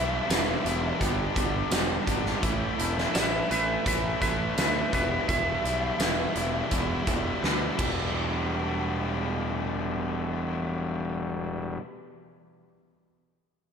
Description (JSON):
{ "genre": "classic rock", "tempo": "84 BPM", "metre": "4/4", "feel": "straight", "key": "E minor", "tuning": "A4 = 445 Hz", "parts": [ { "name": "lightly driven lead guitar", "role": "melody", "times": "0.0-6.7 s", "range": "B4 to E5", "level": "-30 LUFS", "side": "equal", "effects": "none" }, { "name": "cranked stack guitar", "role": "riff", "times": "0.0-11.8 s", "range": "E2 to G4", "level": "-32 LUFS", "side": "left 8 dB", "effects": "overdrive, spring reverb, slapback echo" }, { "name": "overdriven semi-hollow guitar", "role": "riff", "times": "0.0-11.8 s", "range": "E2 to G4", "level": "-33 LUFS", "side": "right 8 dB", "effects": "none" }, { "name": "fuzz fingered electric bass", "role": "bass", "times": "0.0-11.8 s", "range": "E1 to D2", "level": "-32 LUFS", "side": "equal", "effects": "overdrive" }, { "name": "huge arena drum kit", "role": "drums", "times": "0.3-8.0 s", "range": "crash cymbal, hi-hat, kick drum, snare drum, tambourine", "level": "-29 LUFS", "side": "equal", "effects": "none" } ], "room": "moderate concert hall reverb, RT60 2.3 s", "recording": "big arena sound", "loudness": "-25 LUFS", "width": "side -7 dB against mid", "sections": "0.0-8.1 A section; 8.1-11.0 B section", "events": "lead electric guitar solo 0.0-8.1; drum fill 7.4-8.1", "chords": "0.0 Em; 1.0 G; 2.4 A; 4.9 Em", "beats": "0.29 1.00 1.72 | 2.43 3.14 3.85 4.57 | 5.28 5.99 6.71 7.42 | 8.14 8.86 9.57 10.29" }